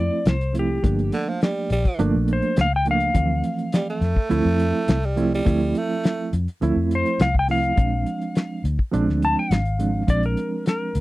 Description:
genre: straight-eighth soul blues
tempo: 104 BPM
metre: 4/4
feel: straight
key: D minor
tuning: A4 = 445 Hz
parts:
  - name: clean lap steel guitar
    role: melody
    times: 0.0-11.0 s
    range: G4 to A5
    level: -24 LUFS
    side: left 2 dB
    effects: none
  - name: barky reed electric piano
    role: accompaniment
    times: 0.0-11.0 s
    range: E3 to E4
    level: -24 LUFS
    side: right 3 dB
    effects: fast tremolo
  - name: vintage muted fingered electric bass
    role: bass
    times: 0.0-11.0 s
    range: G1 to F2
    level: -23 LUFS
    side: left 1 dB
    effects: none
  - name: cloth-damped thuddy drum kit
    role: drums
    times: 0.3-11.0 s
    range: hi-hat, kick drum, snare drum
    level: -20 LUFS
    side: left 1 dB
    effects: none
  - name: growling tenor saxophone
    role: second line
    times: 1.1-6.3 s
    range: D3 to A3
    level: -26 LUFS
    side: right 2 dB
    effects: none
room: little or no reverb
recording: dry, close 1970s-style studio recording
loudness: -19 LUFS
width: side -18 dB against mid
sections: 0.0-11.0 A section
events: none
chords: 0.0 Dm7; 0.8 Gm7; 3.2 Dm7; 7.8 Bb7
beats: 0.26 | 0.84 1.42 2.00 2.58 | 3.15 3.73 4.31 4.89 | 5.47 6.05 6.62 7.20 | 7.78 8.36 8.94 9.51 | 10.09 10.67

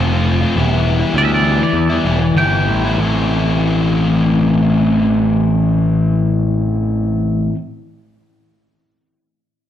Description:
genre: rock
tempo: 93-106 BPM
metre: 4/4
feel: straight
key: A minor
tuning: A4 = 436 Hz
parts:
  - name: biting overdriven guitar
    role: riff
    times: 0.0-7.6 s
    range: A2 to F4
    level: -16 LUFS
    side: left 4 dB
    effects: slapback echo
  - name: growling picked electric bass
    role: bass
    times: 0.0-7.5 s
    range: E1 to E2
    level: -16 LUFS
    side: right 1 dB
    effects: overdrive
  - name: twangy electric guitar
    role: melody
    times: 1.2-3.0 s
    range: D5 to G5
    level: -21 LUFS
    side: right 2 dB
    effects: slapback echo, digital delay
room: small room ambience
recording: live gig heard through the venue's PA, club reverb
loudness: -13 LUFS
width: side -10 dB against mid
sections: 0.0-3.0 A section; 3.0-8.2 B section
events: slowing down 0.0-3.0; clean electric guitar solo 0.0-3.0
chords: 0.0 F; 0.6 Em; 3.0 Am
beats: | 0.56 1.14 1.74 2.35 | 2.99 3.64 4.28 4.93 | 5.58 6.22 6.87 7.52

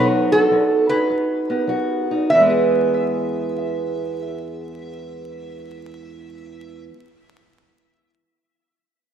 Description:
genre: acoustic country blues, solo or duo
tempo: 94-110 BPM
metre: 4/4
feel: swing 67% on 8ths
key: E major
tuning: A4 = 440 Hz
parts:
  - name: metal-body resonator slide guitar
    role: melody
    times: 0.0-6.8 s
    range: A4 to E5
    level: -19 LUFS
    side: right 1 dB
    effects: analog delay
  - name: fingerpicked steel-string acoustic guitar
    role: accompaniment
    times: 0.0-7.1 s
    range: E2 to G#4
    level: -21 LUFS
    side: right 1 dB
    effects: none
room: wet lush hall reverb, RT60 2.5 s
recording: rough home demo mix, vinyl crackle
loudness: -17 LUFS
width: side -9 dB against mid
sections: 0.0-2.3 A section; 2.3-7.4 B section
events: slowing down 0.0-2.3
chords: 0.0 B; 2.3 E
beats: 0.51 1.08 1.67 | 2.30 2.94 3.58 4.21 | 4.85 5.49 6.13 6.77

